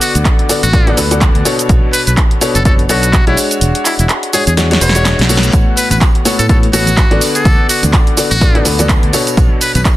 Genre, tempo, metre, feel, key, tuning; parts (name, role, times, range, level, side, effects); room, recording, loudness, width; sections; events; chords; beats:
piano house; 125 BPM; 4/4; swing 57% on 16ths; A4 = 440 Hz
trumpet with metal mute; melody; 0.0-9.8 s; E4 to C#5; -19 LUFS; equal; dub echo
clear upright piano; riff; 0.0-10.0 s; A2 to D5; -16 LUFS; left 2 dB; sidechain pumping, dub echo
punchy analog drum machine; drums; 0.0-10.0 s; handclaps, hi-hat, shaker, snare drum; -16 LUFS; right 1 dB
fingered electric bass; bass; 0.2-9.8 s; E1 to A2; -15 LUFS; equal; sidechain pumping
electronic kick drum; drums; 0.3-10.0 s; -11 LUFS; equal
reverse cymbal; sound effects; 5.1-5.5 s; -25 LUFS; left 2 dB
tambourine and congas; percussion; 5.5-10.0 s; -22 LUFS; right 2 dB
studio ambience; dense, heavily limited modern master; -9 LUFS; side -15 dB against mid
0.0-10.0 A section
kick drops out 3.6-5.5; drum fill 4.6-5.5
0.0 D6; 1.5 Bm9; 3.4 E13; 5.5 A69; 7.2 D6; 9.1 Bm9
0.25 0.73 1.21 | 1.69 2.17 2.65 3.13 | 3.61 4.09 4.57 5.05 | 5.53 6.01 6.49 6.97 | 7.45 7.93 8.41 8.89 | 9.37 9.85